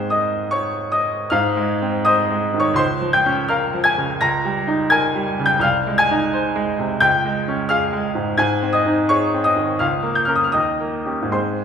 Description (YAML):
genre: classical, romantic character piece for solo piano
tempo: 73-89 BPM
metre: 2/4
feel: rubato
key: Ab major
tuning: A4 = 439 Hz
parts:
  - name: bright baby grand piano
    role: solo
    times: 0.0-11.6 s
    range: C2 to Bb6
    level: -16 LUFS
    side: equal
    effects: none
room: moderate scoring stage reverb, RT60 1.9 s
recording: recorded in a church or concert hall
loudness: -16 LUFS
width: side -7 dB against mid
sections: 0.0-1.3 A section; 1.3-11.6 B section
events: none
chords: 0.0 Ab; 2.8 Bbm/Db; 4.2 Eb7/Db; 5.6 Ab/C; 7.0 Db; 8.4 Ab; 9.8 Bbm/Db; 10.5 Eb7